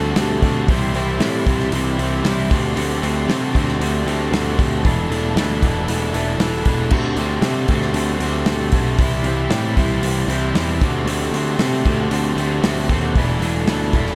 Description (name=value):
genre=indie rock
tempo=116 BPM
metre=4/4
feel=straight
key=D mixolydian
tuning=A4 = 438 Hz
part: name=electric guitar through a small old amp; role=riff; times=0.0-14.2 s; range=C3 to C5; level=-25 LUFS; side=equal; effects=none
part: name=overdriven semi-hollow guitar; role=riff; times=0.0-14.2 s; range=E2 to F#4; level=-27 LUFS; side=equal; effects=subtle chorus
part: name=modern bright picked electric bass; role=bass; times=0.0-14.2 s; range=E1 to C3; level=-24 LUFS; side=equal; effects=none
part: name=loose indie drum kit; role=drums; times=0.2-14.1 s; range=crash cymbal, hi-hat, kick drum, snare drum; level=-24 LUFS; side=equal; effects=none
room=light reverb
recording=none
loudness=-19 LUFS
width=mono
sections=0.0-14.2 A section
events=none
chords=0.0 D7sus4; 0.7 C; 2.5 D7sus4; 4.8 E7sus4; 6.9 D7sus4; 9.0 C; 10.8 D7sus4; 13.1 E7sus4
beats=0.17 | 0.69 1.21 1.73 2.25 | 2.77 3.29 3.81 4.32 | 4.84 5.36 5.88 6.40 | 6.92 7.43 7.95 8.47 | 8.99 9.51 10.03 10.55 | 11.07 11.59 12.11 12.63 | 13.14 13.66